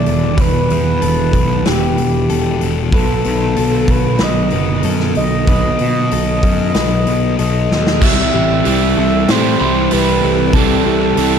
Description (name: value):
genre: rock, shoegaze and dream pop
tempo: 94 BPM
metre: 4/4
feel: straight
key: unclear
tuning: A4 = 438 Hz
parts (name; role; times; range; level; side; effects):
- reedy FM lead; melody; 0.0-11.4 s; G4 to E5; -19 LUFS; equal; chorus, digital delay
- direct-recorded clean electric guitar; arpeggios; 0.0-11.4 s; G4 to B5; -27 LUFS; left 8 dB; wide subtle chorus, digital delay
- overdriven semi-hollow guitar; riff; 0.0-11.4 s; E2 to G4; -19 LUFS; right 12 dB; reverse reverb
- thick fuzz guitar; riff; 0.0-11.4 s; E2 to C4; -19 LUFS; left 12 dB; distortion, lush chorus
- fuzz picked electric bass; bass; 0.0-11.4 s; E1 to B2; -18 LUFS; equal; overdrive
- big rock drum kit; drums; 0.1-11.3 s; crash cymbal, hi-hat, kick drum, snare drum; -19 LUFS; equal; none
room: studio reverb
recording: dark, warm production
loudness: -12 LUFS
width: side -7 dB against mid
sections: 0.0-8.0 A section; 8.0-11.4 B section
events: drum fill 7.7-8.0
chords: 0.0 Em; 2.9 B7; 8.0 C6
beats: | 0.39 1.03 1.66 2.30 | 2.94 3.57 4.21 4.84 | 5.48 6.12 6.75 7.38 | 8.02 8.65 9.28 9.91 | 10.54 11.17